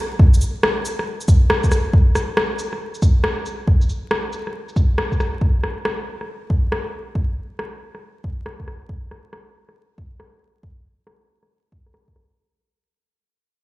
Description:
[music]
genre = future garage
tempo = 138 BPM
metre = 4/4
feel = swing 65% on 16ths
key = none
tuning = none
[part]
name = electronic kick drum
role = drums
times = 0.2-12.1 s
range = none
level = -16 LUFS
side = equal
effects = none
[part]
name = electronic shaker and rim click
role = drums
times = 0.3-12.3 s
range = none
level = -23 LUFS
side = equal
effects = low-pass filter on perc, low-pass filter on snare, low-pass filter on room
[sound]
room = light reverb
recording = played on a big sound system in a bare room, large studio reverb, vinyl crackle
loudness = -17 LUFS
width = side -18 dB against mid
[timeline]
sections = 0.0-12.4 A section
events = fade-out 0.0-12.4; filter sweep on drum 0.0-12.4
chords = none

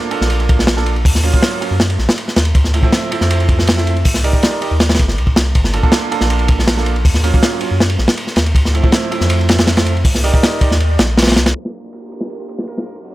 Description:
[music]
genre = drum and bass, jungle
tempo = 160 BPM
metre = 4/4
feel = straight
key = G minor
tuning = A4 = 443 Hz
[part]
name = clear concert grand piano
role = stabs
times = 0.0-10.7 s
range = F3 to D5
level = -21 LUFS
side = right 4 dB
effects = vintage 12-bit sampler grit, dub echo
[part]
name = crunchy breakbeat drum kit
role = drums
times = 0.1-13.1 s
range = hi-hat, kick drum, ride cymbal, snare drum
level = -14 LUFS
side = equal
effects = high-pass filter on kick, high-pass filter on cymbals, high-pass filter on hats, high-pass filter on snare, high-pass filter on room
[part]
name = soft dub sub bass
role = bass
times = 0.2-11.5 s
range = G1 to Gb2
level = -16 LUFS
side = equal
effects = none
[part]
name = dark chamber string section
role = sustained chords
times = 11.5-13.1 s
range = Gb3 to Bb4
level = -31 LUFS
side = right 2 dB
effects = vintage 12-bit sampler grit, low-pass filter
[part]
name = downlifter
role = sound effects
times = 11.8-13.1 s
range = none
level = -52 LUFS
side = left 1 dB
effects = none
[part]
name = trumpet with metal mute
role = melody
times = 12.7-13.0 s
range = Bb4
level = -39 LUFS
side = equal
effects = dub echo
[sound]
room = small room reverb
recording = low-pass filter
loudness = -12 LUFS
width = side -16 dB against mid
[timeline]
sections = 0.0-11.6 A section; 11.6-13.1 B section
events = kick drops out 10.8-11.6; filter sweep on string section 11.6-13.1; filter sweep 11.6-13.1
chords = 0.0 Gm7 (rootless); 1.1 Ebm7; 2.6 Dm7; 4.1 Cm7; 5.6 Gm7; 7.1 Ebm7; 8.6 Dm7; 10.1 Cm7; 11.6 Gm7

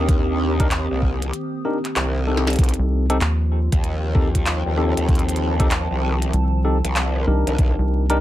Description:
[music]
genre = glitch hop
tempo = 96 BPM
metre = 4/4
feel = swing 64% on 16ths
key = unclear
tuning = A4 = 440 Hz
[part]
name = warbly tape-like pad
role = sustained chords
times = 0.0-8.2 s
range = Eb3 to C5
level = -31 LUFS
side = equal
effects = chorus, built-in reverb, sidechain pumping
[part]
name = bright tine electric piano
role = stabs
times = 0.0-8.2 s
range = C4 to Bb4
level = -25 LUFS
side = left 2 dB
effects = sidechain pumping, digital delay
[part]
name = growl bass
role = bass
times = 0.0-7.8 s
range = C2 to Eb2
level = -22 LUFS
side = equal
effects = chorus, tube saturation
[part]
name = warbly tape-like pad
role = texture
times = 0.0-8.2 s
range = C4 to Eb6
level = -29 LUFS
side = right 2 dB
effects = chorus, built-in reverb, sidechain pumping
[part]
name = electronic kick drum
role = drums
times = 0.1-7.7 s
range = none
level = -19 LUFS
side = equal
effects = none
[part]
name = glitchy drum kit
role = drums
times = 0.1-8.2 s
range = handclaps, hi-hat, rim click, snare drum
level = -25 LUFS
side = equal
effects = none
[part]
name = rubbery square bass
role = bass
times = 2.8-8.2 s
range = C2 to Eb2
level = -18 LUFS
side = equal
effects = none
[sound]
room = light reverb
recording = vinyl crackle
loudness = -18 LUFS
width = side -14 dB against mid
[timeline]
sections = 0.0-8.2 A section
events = drum fill 2.3-2.6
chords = 0.0 F7/C

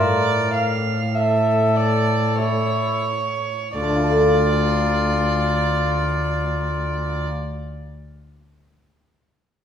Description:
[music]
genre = classical, baroque-style sonata movement with continuo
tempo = 44-51 BPM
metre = 3/4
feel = rubato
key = D minor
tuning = A4 = 441 Hz
[part]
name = clear trumpet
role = melody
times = 0.0-7.3 s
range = E4 to Bb4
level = -25 LUFS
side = left 4 dB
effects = none
[part]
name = warm violin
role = second line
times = 0.0-7.3 s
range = C#5 to F5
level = -23 LUFS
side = right 3 dB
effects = none
[part]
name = lute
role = accompaniment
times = 0.0-7.6 s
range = A2 to F5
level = -25 LUFS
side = equal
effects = none
[part]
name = dark cello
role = bass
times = 0.0-7.3 s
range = D2 to A2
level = -23 LUFS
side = equal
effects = none
[sound]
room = wet recital hall reverb, RT60 1.5 s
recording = heard from further back in the room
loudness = -18 LUFS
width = side -8 dB against mid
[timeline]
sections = 0.0-3.8 A section; 3.8-7.8 B section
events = slowing down 0.0-3.8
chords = 0.0 Dmadd9/A; 2.4 A; 3.8 Dm

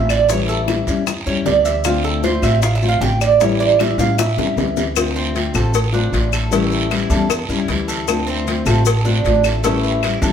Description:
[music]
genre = latin, Cuban son and guajira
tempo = 154 BPM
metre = 4/4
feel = straight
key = D minor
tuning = A4 = 441 Hz
[part]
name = nylon-string guitar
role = accompaniment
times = 0.0-10.3 s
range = D3 to F4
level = -20 LUFS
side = left 5 dB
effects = none
[part]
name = Cuban tres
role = arpeggios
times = 0.0-10.3 s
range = A3 to G5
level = -20 LUFS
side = right 7 dB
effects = none
[part]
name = upright bass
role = bass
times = 0.0-10.3 s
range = A1 to A2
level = -20 LUFS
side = equal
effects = none
[part]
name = bongos and cowbell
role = percussion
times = 0.1-10.2 s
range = none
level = -24 LUFS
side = left 6 dB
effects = none
[part]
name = claves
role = percussion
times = 0.1-10.2 s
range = none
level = -27 LUFS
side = left 8 dB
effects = none
[part]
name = guiro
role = percussion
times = 0.1-10.3 s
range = none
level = -28 LUFS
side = right 5 dB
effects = none
[part]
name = maracas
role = percussion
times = 0.1-10.3 s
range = none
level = -30 LUFS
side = left 8 dB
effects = none
[sound]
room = moderate large studio reverb, RT60 0.9 s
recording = band playing live in one room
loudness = -15 LUFS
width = side -8 dB against mid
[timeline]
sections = 0.0-5.0 A section; 5.0-10.3 B section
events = Cuban tres solo 0.0-5.0; drum fill 4.0-5.0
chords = 0.3 A7; 1.9 Dm7; 3.4 A7; 5.0 Dm7; 6.5 A7; 8.1 Dm7; 9.6 A7

